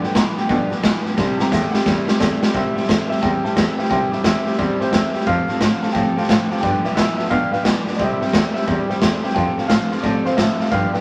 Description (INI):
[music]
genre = rockabilly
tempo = 176 BPM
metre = 4/4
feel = swing 64% on 8ths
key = C major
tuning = A4 = 440 Hz
[part]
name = picked steel-string acoustic guitar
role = accompaniment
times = 0.0-11.0 s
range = G2 to A4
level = -29 LUFS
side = equal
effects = none
[part]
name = tack piano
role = accompaniment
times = 0.0-11.0 s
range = E3 to C6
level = -29 LUFS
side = equal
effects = none
[part]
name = electric guitar through a small old amp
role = riff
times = 0.0-11.0 s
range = F2 to A3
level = -27 LUFS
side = equal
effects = none
[part]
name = raw garage drum kit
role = drums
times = 0.0-11.0 s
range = hi-hat, kick drum, snare drum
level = -22 LUFS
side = equal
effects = none
[part]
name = rich cello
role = bass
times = 0.2-10.8 s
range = C2 to B2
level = -26 LUFS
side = equal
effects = none
[part]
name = electric guitar through a small old amp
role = melody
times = 2.2-11.0 s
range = C5 to G5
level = -27 LUFS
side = equal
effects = none
[sound]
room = moderate studio ambience, RT60 0.5 s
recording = vinyl crackle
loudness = -19 LUFS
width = mono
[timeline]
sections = 0.0-2.5 A section; 2.5-11.0 B section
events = drum fill 1.2-2.5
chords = 0.0 G7; 1.2 C; 5.3 F; 6.6 G7; 8.0 C; 9.4 F